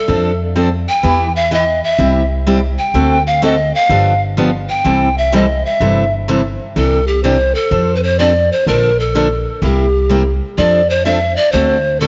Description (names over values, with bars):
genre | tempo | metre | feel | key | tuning
country, western swing | 126 BPM | 4/4 | swing 66% on 8ths | C major | A4 = 445 Hz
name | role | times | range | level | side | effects
breathy mellow polished pan flute | melody | 0.0-12.1 s | G4 to G5 | -17 LUFS | equal | tape echo
picked steel-string acoustic guitar | accompaniment | 0.1-12.1 s | C3 to A4 | -19 LUFS | equal | none
upright bass | bass | 0.1-12.1 s | G1 to F2 | -20 LUFS | equal | none
room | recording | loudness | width
moderate echo chamber reverb, RT60 2.1 s | nothing above 7.7 kHz | -14 LUFS | mono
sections
0.0-6.8 A section; 6.8-12.1 B section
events
pan flute solo 0.0-6.8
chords
0.1 F6; 1.0 Em; 2.0 C; 2.9 D7; 3.9 G7; 4.8 C6; 6.8 Cadd9; 7.7 F6; 8.7 Bbmaj7; 9.6 C7; 10.6 F6; 11.5 D7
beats
0.08 0.56 | 1.04 1.51 1.99 2.47 | 2.94 3.42 3.90 4.37 | 4.85 5.33 5.80 6.28 | 6.76 7.24 7.71 8.19 | 8.67 9.14 9.62 10.10 | 10.58 11.06 11.53 12.01